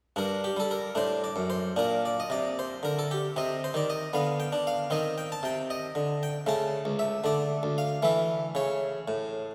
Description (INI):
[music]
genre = classical, baroque-style suite movement for harpsichord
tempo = 76 BPM (dotted quarters)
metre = 6/8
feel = rubato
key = unclear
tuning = A4 = 440 Hz
[part]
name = harpsichord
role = solo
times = 0.2-9.5 s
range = C#2 to A5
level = -29 LUFS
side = equal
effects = none
[sound]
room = wet church reverb, RT60 3.0 s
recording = none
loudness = -29 LUFS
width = mono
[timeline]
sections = 0.2-9.5 A section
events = none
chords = 0.2 G5; 1.0 D/A; 1.8 Bb69; 3.4 Cm; 4.1 Dm6; 4.9 Cm; 6.5 A/C#; 7.2 D5; 8.0 A